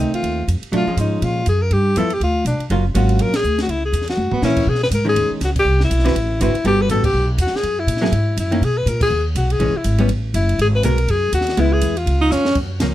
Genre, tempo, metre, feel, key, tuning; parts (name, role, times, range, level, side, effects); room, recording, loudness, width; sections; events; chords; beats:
jazz, small-group swing and bop; 244 BPM; 4/4; swing 59% on 8ths; F# major, B major from 4.7 s; A4 = 442 Hz
breathy alto saxophone; melody; 0.0-12.5 s; D4 to B4; -20 LUFS; left 2 dB
vintage hollow-body jazz guitar; accompaniment; 0.0-12.9 s; D3 to B4; -21 LUFS; right 1 dB
upright bass; bass; 0.0-12.9 s; F#1 to B2; -19 LUFS; equal
compact cocktail drum kit; drums; 0.1-12.9 s; crash cymbal, hi-hat, kick drum, ride cymbal, snare drum, toms; -28 LUFS; right 1 dB
clear alto saxophone; second line; 4.3-4.7, 12.2-12.6 s; B3 to D#4; -18 LUFS; right 1 dB
light reverb; -15 LUFS; side -14 dB against mid
0.0-4.7 A section; 4.7-12.6 B section
band accent 3.3, 5.5, 7.0, 9.0; drum fill 4.2, 12.3
0.0 F7; 0.7 A#m7; 1.7 G6; 2.7 F#maj7; 3.7 C#m; 4.2 F#7; 4.7 B69; 5.7 Cmaj9#11; 6.2 D13; 6.6 Gmaj9; 7.6 F#9; 8.6 Bmaj7; 9.6 A#m7b5; 10.1 A5; 10.6 G#m9; 11.6 C#m7; 12.1 C#
0.24 0.48 | 0.73 0.98 1.23 1.47 | 1.72 1.97 2.21 2.46 | 2.71 2.95 3.20 3.44 | 3.69 3.94 4.18 4.43 | 4.68 4.92 5.17 5.42 | 5.66 5.91 6.15 6.40 | 6.65 6.89 7.14 7.39 | 7.63 7.88 8.12 8.37 | 8.62 8.86 9.11 9.36 | 9.60 9.85 10.10 10.34 | 10.59 10.84 11.08 11.33 | 11.57 11.82 12.07 12.31 | 12.56 12.81